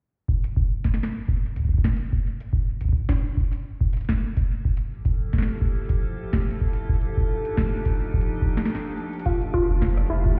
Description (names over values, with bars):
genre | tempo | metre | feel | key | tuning
IDM | 107 BPM | 4/4 | swing 56% on 16ths | F major | A4 = 440 Hz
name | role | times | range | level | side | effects
electronic kick drum | drums | 0.3-10.4 s | none | -25 LUFS | equal | none
booming analog drum machine | drums | 0.4-10.1 s | crash cymbal, hi-hat, rim click, snare drum | -34 LUFS | equal | delay
icy glass pad | sustained chords | 5.0-10.4 s | F3 to A4 | -34 LUFS | equal | chorus, built-in reverb, vintage 12-bit sampler grit, shimmer reverb
warbly dusty pluck | arpeggios | 9.3-10.2 s | E4 to F4 | -28 LUFS | equal | chorus, digital delay, shimmer reverb
pulsing gated texture | texture | 9.7-10.4 s | F3 to F5 | -42 LUFS | equal | chorus, built-in reverb, shimmer reverb
warm sub bass | bass | 9.7-10.4 s | F1 | -25 LUFS | equal | tube saturation
room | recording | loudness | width
light reverb, digital ambience | heard muffled through a wall, stone room reverb, EQ | -24 LUFS | mono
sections
0.3-9.3 A section; 9.3-10.4 B section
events
break 8.7-9.3; drum fill 9.0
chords
0.3 N.C.; 4.8 Fmaj9; 7.0 Ebmaj9#11; 9.3 Fmaj9